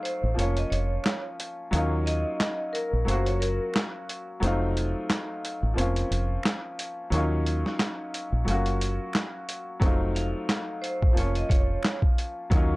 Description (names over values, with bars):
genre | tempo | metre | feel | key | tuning
hip hop, boom-bap hip-hop | 89 BPM | 4/4 | swing 57% on 16ths | Bb harmonic minor | A4 = 440 Hz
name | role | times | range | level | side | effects
vibraphone with medium hard mallets | melody | 0.0-3.7, 10.2-12.0 s | Bb4 to F5 | -32 LUFS | right 1 dB | high-pass filter, low-pass filter
clear upright piano | accompaniment | 0.0-12.8 s | F3 to Gb4 | -30 LUFS | left 1 dB | cassette tape, high-pass filter, low-pass filter
boom bap sampler-style drum kit | drums | 0.1-12.7 s | handclaps, hi-hat, kick drum, snare drum | -26 LUFS | equal | none
deep dub fingered electric bass | bass | 0.2-12.8 s | F1 to Eb2 | -26 LUFS | equal | tube saturation
finger snaps | percussion | 1.0-12.0 s | none | -39 LUFS | right 2 dB | none
room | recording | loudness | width
little or no reverb | dry, gritty hardware recording, cassette tape | -24 LUFS | side -22 dB against mid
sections
0.0-12.8 A section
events
break 0.0-9.8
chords
0.4 Bbm/F; 1.7 Ebm9; 3.1 Gbmaj7; 4.4 F7b9; 5.8 Bbmadd9/F; 7.1 Ebm9; 8.5 Gbmaj7; 9.8 F7b9; 11.2 Bbm/F